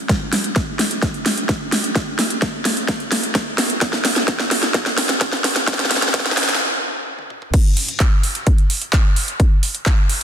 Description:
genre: EDM.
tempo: 129 BPM.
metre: 4/4.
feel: straight.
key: none.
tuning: none.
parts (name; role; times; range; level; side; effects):
big-room dance drum kit; drums; 0.1-10.2 s; crash cymbal, handclaps, hi-hat, snare drum, toms; -18 LUFS; equal; overdrive.
electronic kick drum; drums; 0.1-10.0 s; none; -17 LUFS; equal; none.
room: moderate lush hall reverb, RT60 2.5 s.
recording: dense, heavily limited modern master, high-pass filter.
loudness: -16 LUFS.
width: side -9 dB against mid.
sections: 0.0-7.5 A section; 7.5-10.2 B section.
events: build-up 0.0-7.5; drum fill 0.0-6.6, 7.2-7.5; filter sweep 0.0-7.5; stop 6.6-7.5; drop 7.5-10.2.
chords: none.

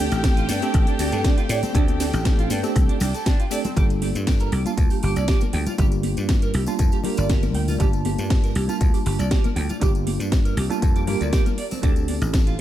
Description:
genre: nu-disco, nu disco.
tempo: 119 BPM.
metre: 4/4.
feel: straight.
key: G minor.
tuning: A4 = 436 Hz.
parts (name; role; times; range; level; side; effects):
bell-like tine electric piano; accompaniment; 0.0-12.6 s; G3 to A5; -27 LUFS; right 1 dB; medium stereo tremolo, low-pass filter, ping-pong delay.
warm chamber violin section; sustained chords; 0.0-3.8 s; G4 to G5; -31 LUFS; left 2 dB; sidechain pumping.
clean electric guitar; riff; 0.0-12.6 s; C4 to G5; -30 LUFS; right 4 dB; lush chorus, ping-pong delay.
dry thumbed slap bass; bass; 0.0-12.6 s; G1 to A2; -24 LUFS; equal; none.
house drum kit; drums; 0.1-12.6 s; hi-hat, ride cymbal, shaker, snare drum; -30 LUFS; equal; none.
tambourine and congas; percussion; 0.1-12.6 s; none; -33 LUFS; left 3 dB; none.
electronic kick drum; drums; 0.2-12.4 s; none; -20 LUFS; equal; none.
room: little or no reverb.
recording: none.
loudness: -19 LUFS.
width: side -12 dB against mid.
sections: 0.0-3.8 A section; 3.8-12.6 B section.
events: drop 0.0-3.8.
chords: 0.0 D7sus4; 3.8 Gm7; 11.6 D7sus4.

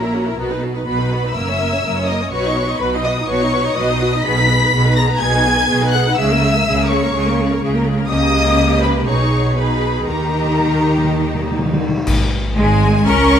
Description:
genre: classical, dramatic, fast romantic movement for symphony orchestra.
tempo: 124 BPM.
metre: 4/4.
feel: straight.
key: B major.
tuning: A4 = 441 Hz.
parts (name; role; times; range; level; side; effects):
warm symphonic violin section; melody; 0.0-13.4 s; G#3 to B6; -21 LUFS; left 2 dB; none.
warm symphonic violin section; second line; 0.0-13.4 s; A#4 to C#6; -22 LUFS; left 3 dB; none.
bright symphonic viola section; accompaniment; 0.0-13.4 s; G#3 to D#5; -20 LUFS; right 1 dB; none.
rich chamber double bass section; bass; 0.0-13.4 s; F#1 to D#2; -20 LUFS; right 1 dB; none.
rich symphonic cello section; bass; 0.0-13.4 s; F#2 to C#4; -20 LUFS; right 1 dB; none.
cymbal swell, clash cymbals and concert bass drum; percussion; 8.1-13.0 s; none; -23 LUFS; left 1 dB; none.
timpani; percussion; 10.1-12.8 s; G#2 to D#3; -22 LUFS; equal; none.
room: moderate scoring stage reverb, RT60 1.5 s.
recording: none.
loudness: -14 LUFS.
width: side -8 dB against mid.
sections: 0.0-12.1 A section; 12.1-13.4 B section.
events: timpani fill 10.1-12.1; band accent 12.1-12.6.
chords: 0.4 B; 1.3 F#7; 2.3 B; 4.2 G#m/B; 6.2 A#m7b5/C#; 8.1 D#7/C#; 9.1 G#m/B; 10.1 D#; 12.1 N.C..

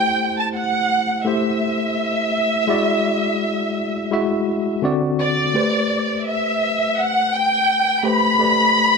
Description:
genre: soul.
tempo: 84 BPM.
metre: 4/4.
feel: swing 54% on 16ths.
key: unclear.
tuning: A4 = 440 Hz.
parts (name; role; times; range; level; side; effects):
dark studio violin section; melody; 0.0-9.0 s; D5 to B5; -18 LUFS; equal; none.
tine electric piano; accompaniment; 0.0-9.0 s; D3 to E5; -21 LUFS; left 2 dB; overdrive, fast stereo tremolo.
room: moderate echo chamber reverb, RT60 2.1 s.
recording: none.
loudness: -17 LUFS.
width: side -4 dB against mid.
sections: 0.0-5.5 A section; 5.5-9.0 B section.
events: none.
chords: 0.0 Am7; 2.7 E7/G#; 4.8 D7; 5.5 Am9.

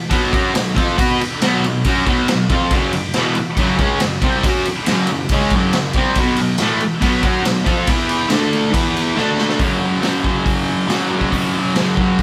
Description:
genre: garage rock duo or trio.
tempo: 139 BPM.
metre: 4/4.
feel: straight.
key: unclear.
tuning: A4 = 440 Hz.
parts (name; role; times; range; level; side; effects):
fuzz guitar; riff; 0.1-12.2 s; E2 to B4; -18 LUFS; equal; distortion.
raw garage drum kit; drums; 0.1-12.2 s; hi-hat, kick drum, ride cymbal, snare drum; -22 LUFS; equal; none.
room: moderate studio reverb, RT60 0.7 s.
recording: band playing live in one room.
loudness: -17 LUFS.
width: mono.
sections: 0.0-9.6 A section; 9.6-12.2 B section.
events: drum fill 9.2-9.6.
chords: 0.0 B5; 2.7 F#5; 6.2 B5; 7.9 E5; 8.3 D5; 8.7 E5; 9.2 D5; 9.6 F#5.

